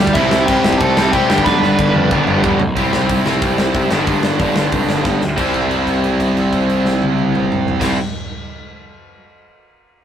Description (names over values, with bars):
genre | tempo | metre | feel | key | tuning
punk rock | 184 BPM | 4/4 | straight | C major | A4 = 440 Hz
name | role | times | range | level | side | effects
crunchy overdriven guitar | riff | 0.0-8.0 s | G2 to C4 | -19 LUFS | left 4 dB | none
fuzz guitar | riff | 0.0-2.6 s | G2 to G4 | -21 LUFS | equal | distortion
tight distorted guitar | riff | 0.0-8.0 s | G2 to G4 | -19 LUFS | right 6 dB | distortion
fuzz picked electric bass | bass | 0.0-7.9 s | G1 to C3 | -20 LUFS | equal | overdrive
dark smooth lead guitar | melody | 0.1-2.1 s | E4 to B5 | -18 LUFS | right 1 dB | overdrive
big rock drum kit | drums | 0.1-7.9 s | crash cymbal, hi-hat, kick drum, snare drum, toms | -20 LUFS | equal | none
room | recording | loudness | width
light reverb | rough rehearsal-room recording | -13 LUFS | side -9 dB against mid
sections
0.0-2.8 A section; 2.8-5.4 B section; 5.4-8.0 C section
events
drum fill 1.5-2.8, 5.1-5.4; held note 5.4-7.8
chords
0.2 C; 1.3 G; 2.8 C; 3.9 G; 5.4 C